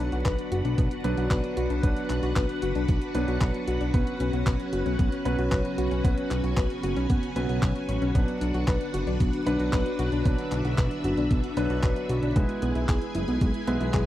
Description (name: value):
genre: italo disco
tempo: 114 BPM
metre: 4/4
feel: straight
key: B dorian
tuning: A4 = 440 Hz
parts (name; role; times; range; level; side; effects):
- string machine, full ensemble; sustained chords; 0.0-14.1 s; C#4 to G#5; -32 LUFS; equal; ensemble chorus
- soft round pluck; arpeggios; 0.0-14.1 s; G#3 to C#5; -31 LUFS; left 2 dB; chorus, cassette tape, tape echo
- warm grand piano; stabs; 0.0-14.1 s; F#3 to B4; -33 LUFS; right 2 dB; tape echo
- fat analog bass; bass; 0.0-14.0 s; F#1 to B1; -29 LUFS; equal; tube saturation
- detuned 8-bit digital drum machine; drums; 0.1-14.0 s; handclaps, hi-hat; -36 LUFS; equal; none
- electronic kick drum; drums; 0.3-14.0 s; none; -25 LUFS; equal; none
room: little or no reverb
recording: dry, close 1970s-style studio recording, vinyl crackle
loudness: -24 LUFS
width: side -13 dB against mid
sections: 0.0-14.1 A section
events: none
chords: 0.0 Bm; 3.9 F#sus4; 8.1 Bm; 12.4 E